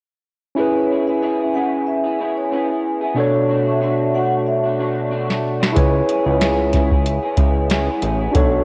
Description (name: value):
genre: indie pop, bedroom pop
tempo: 93 BPM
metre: 4/4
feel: swing 55% on 16ths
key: unclear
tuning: A4 = 439 Hz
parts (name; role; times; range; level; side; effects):
- barky tine electric piano; accompaniment; 0.6-8.6 s; B2 to C#5; -22 LUFS; equal; overdrive, cassette tape
- electric guitar through a small old amp; accompaniment; 0.6-8.6 s; B2 to G#4; -26 LUFS; equal; analog chorus, warbly pitch drift, cassette tape
- vibraphone with medium mallets; second line; 0.8-5.1 s; C#5 to F#5; -27 LUFS; equal; lush chorus, cassette tape, analog delay
- soft vintage rhythm box; drums; 5.3-8.5 s; hi-hat, kick drum, snare drum; -21 LUFS; equal; cassette tape
- fat analog bass; bass; 5.8-8.6 s; A1 to C#2; -22 LUFS; equal; none
room: moderate lush hall reverb, RT60 2.1 s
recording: home recording on cassette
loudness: -18 LUFS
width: mono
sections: 0.6-5.8 A section; 5.8-8.6 B section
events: drum fill 5.1-5.8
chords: 0.6 C#m7; 3.2 Bm7; 5.8 C#m7